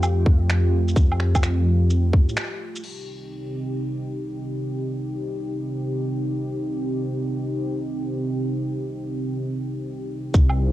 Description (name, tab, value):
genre	future garage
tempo	128 BPM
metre	4/4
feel	swing 66% on 16ths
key	C dorian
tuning	A4 = 440 Hz
part	dark analog pad	sustained chords	0.0-10.7 s	C3 to G4	-27 LUFS	right 1 dB	chorus, sidechain pumping
part	dark detuned saw bass	bass	0.0-2.4, 10.3-10.7 s	C2 to A2	-20 LUFS	equal	tube saturation, sidechain pumping
part	garage drum kit	drums	0.0-3.0, 10.3-10.6 s	crash cymbal, finger snaps, shaker, woodblock	-28 LUFS	right 1 dB	small room ambience
part	electronic kick drum	drums	0.3-2.3, 10.3-10.5 s	none	-17 LUFS	equal	small room ambience
room	light reverb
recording	cassette tape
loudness	-21 LUFS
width	side -14 dB against mid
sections	0.0-2.8 A section; 2.8-10.3 B section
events	break 2.4-2.8; band accent 2.4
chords	0.0 Fadd9; 2.8 Cm